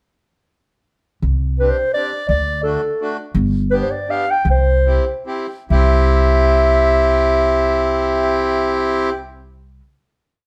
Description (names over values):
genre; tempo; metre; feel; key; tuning
alpine folk, alpine dance band; 133-171 BPM; 3/4; rubato; C major; A4 = 440 Hz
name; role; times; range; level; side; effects
upright bass; bass; 1.2-9.8 s; G1 to D2; -20 LUFS; equal; none
dark clarinet; melody; 1.6-9.1 s; A4 to G5; -20 LUFS; equal; none
accordion; accompaniment; 1.6-9.1 s; A3 to G4; -22 LUFS; equal; none
room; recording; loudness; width
wet studio reverb, RT60 0.8 s; band playing live in one room; -17 LUFS; mono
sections
1.2-5.7 A section; 5.7-8.3 final chord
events
slowing down 3.3-5.7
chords
1.2 Csus2; 2.3 D; 3.3 G; 4.4 C